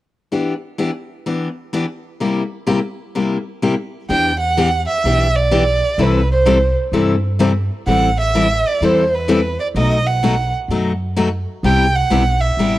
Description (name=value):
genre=acoustic string swing (jazz manouche)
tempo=127 BPM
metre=4/4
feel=swing 63% on 8ths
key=E minor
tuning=A4 = 440 Hz
part: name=picked steel-string acoustic guitar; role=accompaniment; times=0.3-12.8 s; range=B2 to A4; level=-18 LUFS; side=left 3 dB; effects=none
part: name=warm violin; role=melody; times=4.1-12.8 s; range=B4 to G5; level=-17 LUFS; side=right 3 dB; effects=none
part: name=upright bass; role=bass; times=4.1-12.8 s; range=A1 to G2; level=-19 LUFS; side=right 1 dB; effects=none
room=studio reverb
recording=dry, close 1970s-style studio recording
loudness=-15 LUFS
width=side -15 dB against mid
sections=0.3-4.1 A section; 4.1-12.8 B section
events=none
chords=0.3 Em7; 2.2 C7; 4.1 Em7; 6.0 C6; 7.9 Am9; 9.8 B7; 11.6 Cmaj7